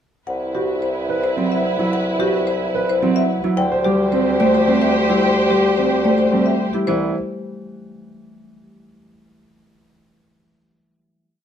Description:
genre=classical, minimalist pattern music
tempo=109 BPM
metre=3/4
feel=straight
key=C lydian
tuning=A4 = 439 Hz
part: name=marimba with medium hard mallets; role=melody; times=0.3-7.1 s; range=G4 to G5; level=-24 LUFS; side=left 7 dB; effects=none
part: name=dark soprano saxophone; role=second line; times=0.3-6.7 s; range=E4 to G4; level=-26 LUFS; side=equal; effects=none
part: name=warm symphonic string section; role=sustained chords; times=0.3-6.7 s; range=E4 to C5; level=-25 LUFS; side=right 1 dB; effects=none
part: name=mellow bassoon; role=bass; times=0.3-7.1 s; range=C2 to D2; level=-23 LUFS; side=equal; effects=none
part: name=warm grand piano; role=arpeggios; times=0.5-7.1 s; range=C4 to C5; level=-22 LUFS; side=right 6 dB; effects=none
part: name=Celtic harp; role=accompaniment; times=1.4-8.6 s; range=E3 to A3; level=-21 LUFS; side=equal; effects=none
room=light reverb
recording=dark, warm production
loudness=-16 LUFS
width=side -9 dB against mid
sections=0.3-6.9 A section; 6.9-8.5 final chord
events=none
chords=0.3 Cmaj7; 3.6 D7sus4; 6.9 C

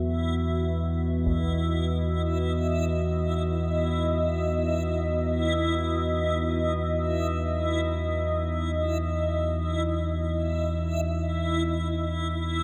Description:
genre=dark ambient drone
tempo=free time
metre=none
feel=none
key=unclear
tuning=A4 = 440 Hz
part: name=deep dark ambient pad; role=sustained chords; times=0.0-12.6 s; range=B3 to E5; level=-32 LUFS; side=equal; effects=chorus, built-in reverb
part: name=deep rumbling drone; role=drone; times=0.0-12.6 s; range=E2 to E3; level=-29 LUFS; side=equal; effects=built-in reverb
part: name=backwards swelling texture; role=texture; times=0.2-12.6 s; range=E4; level=-35 LUFS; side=equal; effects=built-in reverb
part: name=taiko ensemble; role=percussion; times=1.3-1.5 s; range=none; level=-35 LUFS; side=equal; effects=low-pass filter on perc
room=moderate spring reverb, RT60 2.6 s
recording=none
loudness=-27 LUFS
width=mono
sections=0.0-12.6 A section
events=none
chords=0.0 Esus2

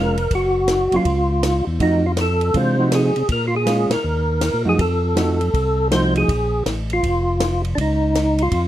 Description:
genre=soul jazz organ trio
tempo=161 BPM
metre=4/4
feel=swing 64% on 8ths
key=Bb minor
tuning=A4 = 440 Hz
part: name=percussive tonewheel organ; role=melody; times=0.0-8.7 s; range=D4 to C5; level=-20 LUFS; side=equal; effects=slow rotary speaker, chorus vibrato, plate reverb
part: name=hollow-body jazz guitar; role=accompaniment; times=0.0-6.3 s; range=E3 to Gb4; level=-21 LUFS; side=right 2 dB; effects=none
part: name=tonewheel organ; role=bass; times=0.0-8.7 s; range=F1 to C3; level=-21 LUFS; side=equal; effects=overdrive, chorus vibrato, slow rotary speaker
part: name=compact cocktail drum kit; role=drums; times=0.2-8.6 s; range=hi-hat, kick drum, ride cymbal, snare drum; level=-26 LUFS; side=equal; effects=none
room=light reverb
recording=dark, warm production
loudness=-16 LUFS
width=side -13 dB against mid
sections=0.0-6.3 A section; 6.3-8.7 A section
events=band accent 3.9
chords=0.3 Gbmaj7(no3); 1.8 F7b9; 3.3 Bbm7; 4.0 Ebm; 4.8 F7b9; 6.3 Bbm7

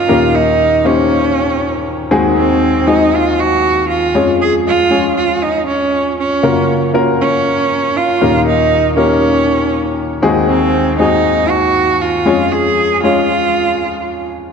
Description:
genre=pop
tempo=118 BPM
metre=4/4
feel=straight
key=unclear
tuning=A4 = 442 Hz
part: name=clear cello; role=melody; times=0.0-14.3 s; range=C4 to Ab4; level=-14 LUFS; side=right 3 dB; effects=none
part: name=warm baby grand piano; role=accompaniment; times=0.0-14.5 s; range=Eb2 to Db5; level=-14 LUFS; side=left 2 dB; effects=none
room=wet concert hall reverb, RT60 2.1 s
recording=dark, warm production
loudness=-11 LUFS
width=side -6 dB against mid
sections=0.0-14.5 A section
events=none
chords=0.1 Eb7; 2.1 Ab7/Eb; 4.1 Db/F; 6.4 Gbmaj7; 8.2 Eb7; 10.2 Ab7/Eb; 12.3 Db/F

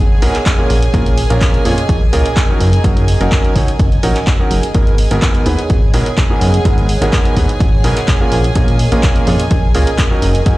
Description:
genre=piano house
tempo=126 BPM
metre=4/4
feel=straight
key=unclear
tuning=A4 = 440 Hz
part: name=warm symphonic violin section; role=sustained chords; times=0.0-10.6 s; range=G#4 to G#5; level=-25 LUFS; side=right 1 dB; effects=sidechain pumping
part: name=plucky analog bass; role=bass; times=0.0-10.6 s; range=F#1 to E#2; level=-14 LUFS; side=equal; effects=sidechain pumping
part: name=airy breathy pad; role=texture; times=0.0-10.6 s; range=G#4 to G#5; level=-24 LUFS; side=right 2 dB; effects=chorus, sidechain pumping
part: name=clear concert grand piano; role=riff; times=0.2-10.6 s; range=G#2 to C#5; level=-19 LUFS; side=right 2 dB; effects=sidechain pumping, dub echo
part: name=punchy analog drum machine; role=drums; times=0.2-10.6 s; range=handclaps, hi-hat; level=-23 LUFS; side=equal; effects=none
part: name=electronic kick drum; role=drums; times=0.5-10.6 s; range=none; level=-14 LUFS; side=equal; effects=none
room=little or no reverb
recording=played on a big sound system in a bare room, large studio reverb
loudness=-11 LUFS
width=side -18 dB against mid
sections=0.0-10.6 A section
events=none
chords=0.0 G#m9; 0.7 A#m7; 2.6 F#6; 4.7 G#m9; 8.3 A#m7

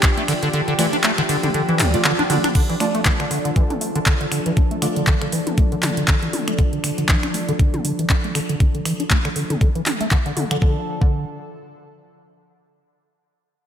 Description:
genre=acid house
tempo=119 BPM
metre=4/4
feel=swing 57% on 16ths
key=D minor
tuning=A4 = 439 Hz
part: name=lush unison pad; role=sustained chords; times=0.0-10.9 s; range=F3 to A4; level=-26 LUFS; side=equal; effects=chorus, sidechain pumping
part: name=acid bass, square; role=riff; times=0.0-11.2 s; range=D2 to D4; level=-23 LUFS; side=equal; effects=tube saturation, wide subtle chorus, sidechain pumping, diffuse ambient delay
part: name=electro analog drum machine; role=drums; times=0.0-10.6 s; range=crash cymbal, finger snaps, handclaps, hi-hat, ride cymbal, toms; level=-23 LUFS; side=equal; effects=none
part: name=electronic kick drum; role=drums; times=0.0-11.1 s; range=none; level=-17 LUFS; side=equal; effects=none
part: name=deep mellow chord stab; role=stabs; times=0.8-4.9 s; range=A3 to D5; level=-27 LUFS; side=right 2 dB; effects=chorus, diffuse ambient delay
room=moderate lush hall reverb, RT60 1.7 s, digital ambience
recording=dreamy mix soaked in reverb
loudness=-17 LUFS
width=side -9 dB against mid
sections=0.0-2.6 A section; 2.6-10.6 B section; 10.6-12.6 C section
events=drop 0.0-2.6; kick drops out 0.5-2.6; drum fill 2.3; filter sweep on acid bass 2.6-10.6; filter sweep on analog synth pad 2.6-10.6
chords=0.0 Dm

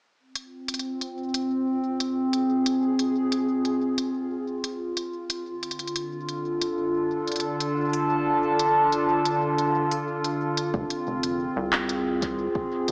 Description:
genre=IDM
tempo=91 BPM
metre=4/4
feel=straight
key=unclear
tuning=A4 = 440 Hz
part: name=warbly tape-like pad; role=sustained chords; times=0.2-12.9 s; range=D3 to A5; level=-24 LUFS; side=equal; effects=chorus, built-in reverb, vintage 12-bit sampler grit, sidechain pumping
part: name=organic electronic drum kit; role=drums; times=0.4-12.9 s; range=handclaps, hi-hat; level=-28 LUFS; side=equal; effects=studio reverb
part: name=rubbery square bass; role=bass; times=10.7-12.9 s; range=F1 to C2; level=-33 LUFS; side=equal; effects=none
part: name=electronic kick drum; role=drums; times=10.7-12.7 s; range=none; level=-32 LUFS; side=equal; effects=studio reverb
room=moderate plate reverb, RT60 3.0 s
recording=small speaker sound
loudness=-23 LUFS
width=side -33 dB against mid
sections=0.2-10.7 A section; 10.7-12.9 B section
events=none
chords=0.2 Fm; 5.5 Dm; 10.7 Fm

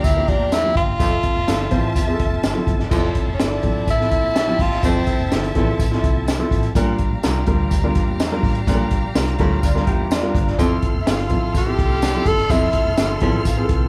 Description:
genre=uptempo 1960s-style soul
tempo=125 BPM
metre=4/4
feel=straight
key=F major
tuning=A4 = 436 Hz
part: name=clear tenor saxophone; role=melody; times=0.0-5.5, 11.0-13.2 s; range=C4 to A4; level=-24 LUFS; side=equal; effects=none
part: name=clear studio string section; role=second line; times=0.0-13.9 s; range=E4 to F6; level=-32 LUFS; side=equal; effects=none
part: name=warm grand piano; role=accompaniment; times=0.0-13.9 s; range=E3 to A5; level=-26 LUFS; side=equal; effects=none
part: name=vintage muted fingered electric bass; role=bass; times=0.0-13.9 s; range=F1 to F2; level=-27 LUFS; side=equal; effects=none
part: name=crunchy breakbeat drum kit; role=drums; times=0.0-13.8 s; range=crash cymbal, hi-hat, kick drum, snare drum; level=-23 LUFS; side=equal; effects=none
part: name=tambourine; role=percussion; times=0.0-13.6 s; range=none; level=-40 LUFS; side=equal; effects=none
part: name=congas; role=percussion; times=0.3-13.9 s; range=none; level=-36 LUFS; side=equal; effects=none
part: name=warm baritone saxophone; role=riff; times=1.0-13.4 s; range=E2 to Bb2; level=-28 LUFS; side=equal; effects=none
part: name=electric guitar through a small old amp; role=riff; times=9.6-10.6 s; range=D4 to G4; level=-28 LUFS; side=equal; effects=phaser
room=light reverb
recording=band playing live in one room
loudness=-19 LUFS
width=mono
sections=0.0-2.9 A section; 2.9-13.9 A section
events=grand piano fill 2.0-2.9, 13.0-13.9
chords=0.0 Bb6; 1.0 Fmaj7; 6.8 Bb6; 10.6 Fmaj7

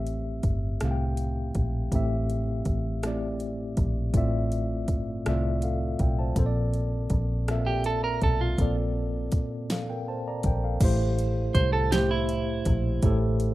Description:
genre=slow six-eight R&B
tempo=54 BPM (dotted quarters)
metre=6/8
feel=straight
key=unclear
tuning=A4 = 442 Hz
part: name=tine electric piano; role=accompaniment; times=0.0-13.5 s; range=A2 to Bb5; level=-29 LUFS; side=left 1 dB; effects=medium stereo tremolo
part: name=vintage muted fingered electric bass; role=bass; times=0.0-13.5 s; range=G1 to C2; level=-28 LUFS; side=equal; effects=none
part: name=smooth R&B drum kit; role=drums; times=0.1-13.5 s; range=crash cymbal, hi-hat, kick drum, rim click, snare drum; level=-27 LUFS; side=equal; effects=none
part: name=clean electric guitar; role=second line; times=7.7-13.2 s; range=E4 to C5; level=-28 LUFS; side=right 4 dB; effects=none
room=digital ambience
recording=rough home demo mix, lossy compression artefacts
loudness=-24 LUFS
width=side -16 dB against mid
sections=0.0-8.6 A section; 8.6-10.8 B section; 10.8-13.5 C section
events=none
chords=0.0 Am7; 4.1 Dm9; 6.4 Bbmaj7; 10.8 Am7

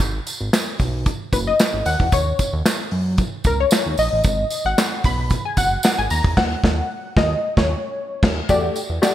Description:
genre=early-eighties boogie funk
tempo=113 BPM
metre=4/4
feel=straight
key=unclear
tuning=A4 = 440 Hz
part: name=fat analog bass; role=bass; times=0.0-9.0 s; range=F#1 to F#2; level=-23 LUFS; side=right 1 dB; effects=none
part: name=modern studio drum kit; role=drums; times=0.0-9.1 s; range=crash cymbal, handclaps, hi-hat, kick drum, snare drum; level=-20 LUFS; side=equal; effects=gated reverb
part: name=tambourine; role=percussion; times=0.0-9.1 s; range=none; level=-30 LUFS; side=right 3 dB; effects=none
part: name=funky polysynth comp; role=accompaniment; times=1.3-9.1 s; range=A3 to B5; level=-21 LUFS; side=left 2 dB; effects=chorus
room=light reverb, small room ambience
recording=bright 1980s-style digital production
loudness=-17 LUFS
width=side -12 dB against mid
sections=0.0-8.5 A section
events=analog polysynth solo 0.0-8.5; band accent 6.4-8.5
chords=0.0 G#m7; 1.9 D#m7; 4.2 G#m7; 6.1 D#m7; 8.5 Em11

